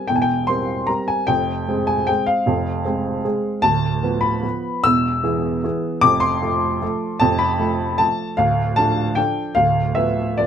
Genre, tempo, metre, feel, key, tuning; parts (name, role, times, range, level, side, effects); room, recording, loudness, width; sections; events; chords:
classical, piano waltz; 152 BPM; 3/4; uneven beats, rubato; F minor; A4 = 440 Hz
warm upright piano; solo; 0.0-10.5 s; D1 to E6; -17 LUFS; equal
light reverb; close, detailed microphones; -17 LUFS; side -8 dB against mid
0.0-10.5 A section
0.0 C7/E; 1.3 Fm; 3.6 Bdim/D; 4.9 E; 6.0 F; 8.4 Dm; 9.6 Bdim/D